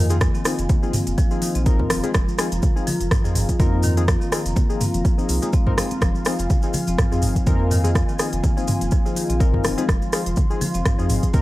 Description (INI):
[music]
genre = afro house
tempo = 124 BPM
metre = 4/4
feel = swing 56% on 16ths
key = F minor pentatonic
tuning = A4 = 438 Hz
[part]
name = dark analog pad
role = sustained chords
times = 0.0-11.4 s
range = F4 to C6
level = -31 LUFS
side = equal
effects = chorus, sidechain pumping
[part]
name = marimba with medium hard mallets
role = arpeggios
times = 0.0-11.4 s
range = Eb3 to F4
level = -28 LUFS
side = left 1 dB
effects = sidechain pumping, analog delay
[part]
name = warm analog keys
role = stabs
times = 0.0-11.4 s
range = C4 to Bb4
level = -28 LUFS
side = left 4 dB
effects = chorus, sidechain pumping, analog delay
[part]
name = warm sub bass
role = bass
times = 0.0-11.4 s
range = Eb1 to F2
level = -22 LUFS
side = equal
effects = sidechain pumping
[part]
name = afro-pop drum kit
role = drums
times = 0.1-11.4 s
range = hi-hat, rim click, toms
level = -25 LUFS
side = right 1 dB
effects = none
[part]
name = congas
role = percussion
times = 0.1-11.4 s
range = none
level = -30 LUFS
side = left 2 dB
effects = none
[part]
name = maracas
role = percussion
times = 0.1-11.4 s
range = none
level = -35 LUFS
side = right 2 dB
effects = none
[part]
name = electronic kick drum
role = drums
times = 0.2-11.4 s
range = none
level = -20 LUFS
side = equal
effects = overdrive
[sound]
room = digital ambience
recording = dry, gritty hardware recording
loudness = -18 LUFS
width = side -17 dB against mid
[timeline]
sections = 0.0-11.4 A section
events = none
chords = 0.0 Fm7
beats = | 0.21 0.69 1.18 1.66 | 2.15 2.63 3.11 3.60 | 4.08 4.57 5.05 5.53 | 6.02 6.50 6.98 7.47 | 7.95 8.44 8.92 9.40 | 9.89 10.37 10.86 11.34